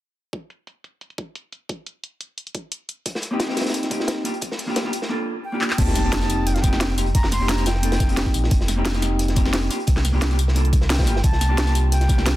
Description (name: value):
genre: liquid drum and bass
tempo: 176 BPM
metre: 4/4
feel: straight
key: F mixolydian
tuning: A4 = 440 Hz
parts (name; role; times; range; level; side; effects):
- drum and bass drum kit; drums; 0.3-12.3 s; crash cymbal, handclaps, hi-hat, snare drum, tambourine; -26 LUFS; equal; overdrive, low-pass filter on hats, low-pass filter on snare, low-pass filter on cymbals, low-pass filter on perc, low-pass filter on room
- electronic kick drum; drums; 0.3-12.2 s; none; -20 LUFS; equal; overdrive, high-pass filter on kick, high-pass filter on room
- crunchy breakbeat drum kit; drums; 3.1-12.4 s; hi-hat, snare drum; -29 LUFS; equal; high-pass filter on hats, high-pass filter on snare, high-pass filter on room
- vintage hollow-body jazz guitar; accompaniment; 3.3-12.4 s; Bb3 to A4; -26 LUFS; equal; tape echo
- breathy bright concert flute; melody; 5.4-8.3, 10.9-12.4 s; F5 to C6; -29 LUFS; equal; tape echo
- sub bass with octave; bass; 5.8-12.4 s; F1 to C2; -21 LUFS; equal; none
- sub drop; sound effects; 5.8-7.1 s; none; -28 LUFS; equal; none
room: light reverb, digital ambience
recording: dense, heavily limited modern master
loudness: -18 LUFS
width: side -15 dB against mid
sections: 0.3-5.8 A section; 5.8-12.4 B section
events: drum fill 5.6; drop 5.8-12.4; impact 5.8-7.1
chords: 0.3 Eb6/Bb; 4.3 Bb6; 5.8 F9sus4; 9.7 C9sus4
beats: | 0.33 0.67 1.01 1.35 | 1.69 2.04 2.38 2.72 | 3.06 3.40 3.74 4.08 | 4.42 4.76 5.10 5.44 | 5.79 6.13 6.47 6.81 | 7.15 7.49 7.83 8.17 | 8.51 8.85 9.19 9.54 | 9.88 10.22 10.56 10.90 | 11.24 11.58 11.92 12.26